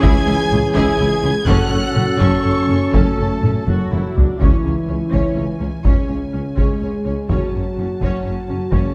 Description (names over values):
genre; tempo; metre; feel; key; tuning
cinematic, epic orchestral film score; 83 BPM (dotted quarters); 6/8; straight; C# minor; A4 = 440 Hz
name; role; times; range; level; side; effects
warm symphonic violin section; melody; 0.0-8.9 s; G#5 to G#6; -33 LUFS; equal; none
warm chamber violin section; second line; 0.0-8.9 s; A4 to G#5; -32 LUFS; equal; none
clear symphonic viola section; accompaniment; 0.0-8.9 s; C#4 to A4; -30 LUFS; equal; none
mellow French horn section; sustained chords; 0.0-8.9 s; A3 to G#4; -27 LUFS; equal; none
warm trombone section; sustained chords; 0.0-8.9 s; C#3 to C#4; -27 LUFS; equal; none
clear trumpet section; stabs; 0.0-4.1 s; G#4 to A4; -27 LUFS; equal; none
mellow tuba; bass; 0.0-8.8 s; F#1 to C#2; -28 LUFS; equal; none
rich symphonic cello section; bass; 0.0-8.8 s; C#2 to F#2; -28 LUFS; equal; none
warm symphonic double bass section; bass; 0.0-8.8 s; F#1 to C#2; -26 LUFS; equal; none
taiko ensemble; drums; 0.0-8.9 s; none; -21 LUFS; equal; none
room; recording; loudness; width
wet concert hall reverb, RT60 1.7 s; dark, warm production; -18 LUFS; mono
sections
0.0-4.4 A section; 4.4-8.9 B section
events
drum fill 3.7-4.4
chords
0.0 C#m; 1.5 F#m; 4.4 C#m; 7.3 F#m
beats
| 0.03 0.75 | 1.47 2.20 | 2.93 3.67 | 4.41 5.13 | 5.85 6.58 | 7.30 8.02 | 8.73